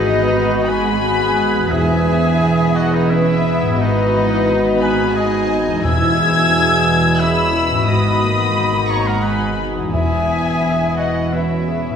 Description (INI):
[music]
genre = cinematic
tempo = 87 BPM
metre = 3/4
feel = rubato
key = E major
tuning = A4 = 441 Hz
[part]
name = dark studio violin section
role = melody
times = 0.0-12.0 s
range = D#5 to G#6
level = -22 LUFS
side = left 4 dB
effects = none
[part]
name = clear oboe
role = second line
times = 0.0-12.0 s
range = D#4 to G#5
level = -25 LUFS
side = right 1 dB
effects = none
[part]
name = flute section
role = second line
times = 0.0-12.0 s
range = B4 to E6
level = -24 LUFS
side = left 2 dB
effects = none
[part]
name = rich studio violin section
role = second line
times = 0.0-12.0 s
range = B4 to E6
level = -25 LUFS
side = left 1 dB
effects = none
[part]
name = warm studio viola section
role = accompaniment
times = 0.0-12.0 s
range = E3 to G#4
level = -24 LUFS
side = right 2 dB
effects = none
[part]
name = warm French horn section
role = sustained chords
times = 0.0-12.0 s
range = B2 to F#4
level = -22 LUFS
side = left 1 dB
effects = none
[part]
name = concert harp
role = arpeggios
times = 0.0-12.0 s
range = E2 to G#4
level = -25 LUFS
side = left 4 dB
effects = none
[part]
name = dark studio double bass section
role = bass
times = 0.0-12.0 s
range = E1 to G#1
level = -25 LUFS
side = right 3 dB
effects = none
[part]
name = warm studio cello section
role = bass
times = 0.0-12.0 s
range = E2 to G#2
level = -21 LUFS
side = right 2 dB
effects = none
[part]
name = timpani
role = percussion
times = 1.7-10.9 s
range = E2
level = -25 LUFS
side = equal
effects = none
[sound]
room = wet scoring stage reverb, RT60 2.0 s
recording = heard from further back in the room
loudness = -14 LUFS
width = side -7 dB against mid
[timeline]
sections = 0.0-12.0 A section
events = none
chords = 0.0 G#m7; 1.7 E; 3.8 G#m7; 5.8 E; 7.9 G#m7; 9.9 E